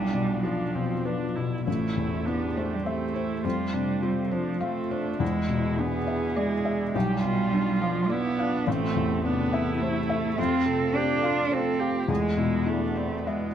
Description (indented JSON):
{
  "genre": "neoclassical piano and strings",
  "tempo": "104 BPM",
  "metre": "3/4",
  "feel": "uneven beats, rubato",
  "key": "A minor",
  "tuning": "A4 = 440 Hz",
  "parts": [
    { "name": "muted cello", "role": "second line", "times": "0.0-13.5 s", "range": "F3 to D4", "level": "-27 LUFS", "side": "right 4 dB", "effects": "none" },
    { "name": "felt-muted upright piano", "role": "accompaniment", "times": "0.0-13.5 s", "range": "A1 to F5", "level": "-28 LUFS", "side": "left 4 dB", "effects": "none" },
    { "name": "muted viola", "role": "accompaniment", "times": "0.0-13.5 s", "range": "B3 to A4", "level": "-33 LUFS", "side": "right 2 dB", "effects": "none" },
    { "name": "warbly tape-like pad", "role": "sustained chords", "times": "0.0-13.5 s", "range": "A3 to D5", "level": "-36 LUFS", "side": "equal", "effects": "chorus, built-in reverb" }
  ],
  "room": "moderate recital hall reverb, RT60 1.4 s",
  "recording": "close, detailed microphones",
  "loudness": "-24 LUFS",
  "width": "side -9 dB against mid",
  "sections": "0.0-1.7 A section; 1.7-13.5 B section",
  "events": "none",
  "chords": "0.0 Bdim; 1.7 Am7; 3.4 F; 5.2 E7; 6.9 Bdim; 8.7 Am7; 10.4 F; 12.1 E7"
}